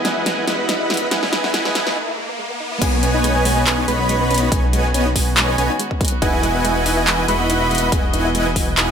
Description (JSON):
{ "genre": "future bass", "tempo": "141 BPM", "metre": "4/4", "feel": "swing 54% on 16ths, half-time", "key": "B major", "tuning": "A4 = 440 Hz", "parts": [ { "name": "warm chamber string section", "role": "sustained chords", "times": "0.0-8.9 s", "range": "D#3 to D#5", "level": "-28 LUFS", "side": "left 1 dB", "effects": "sidechain pumping" }, { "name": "soft round pluck", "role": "arpeggios", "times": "0.0-8.9 s", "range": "G#3 to E4", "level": "-28 LUFS", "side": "left 2 dB", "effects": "chorus, sidechain pumping, dub echo" }, { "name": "dense compressed supersaw", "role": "riff", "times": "0.0-8.9 s", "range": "B3 to B5", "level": "-20 LUFS", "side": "right 1 dB", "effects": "sidechain pumping, low-pass filter, dub echo" }, { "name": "wide detuned saw bass", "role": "bass", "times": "0.0-8.9 s", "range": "E1 to B1", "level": "-23 LUFS", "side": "equal", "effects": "chorus, sidechain pumping, high-pass filter" }, { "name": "big-room dance drum kit", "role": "drums", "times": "0.0-8.9 s", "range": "crash cymbal, handclaps, hi-hat, snare drum", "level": "-21 LUFS", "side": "equal", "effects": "none" }, { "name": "riser", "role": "sound effects", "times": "0.1-2.8 s", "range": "none", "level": "-27 LUFS", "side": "equal", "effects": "none" }, { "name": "airy dreamy lead", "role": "arpeggios", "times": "2.8-8.9 s", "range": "G#5 to B5", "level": "-26 LUFS", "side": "equal", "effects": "chorus, cassette tape, sidechain pumping, dub echo" }, { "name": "electronic kick drum", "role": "drums", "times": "2.8-8.7 s", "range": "none", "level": "-20 LUFS", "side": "equal", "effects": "none" } ], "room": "light reverb, digital ambience", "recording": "high-pass filter", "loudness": "-16 LUFS", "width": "side -7 dB against mid", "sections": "0.0-2.8 A section; 2.8-8.9 B section", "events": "build-up 0.0-2.8; drum fill 0.0-2.0; filter sweep on synth arpeggio sound 0.0-2.8; riser 0.1-2.8; break 2.0-2.8; drop 2.8-8.9", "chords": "0.0 Emaj9; 2.8 B69; 6.2 Emaj9", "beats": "0.26 0.69 | 1.11 1.54 1.96 2.39 | 2.81 3.24 3.67 4.09 | 4.52 4.94 5.37 5.79 | 6.22 6.64 7.07 7.50 | 7.92 8.35 8.77" }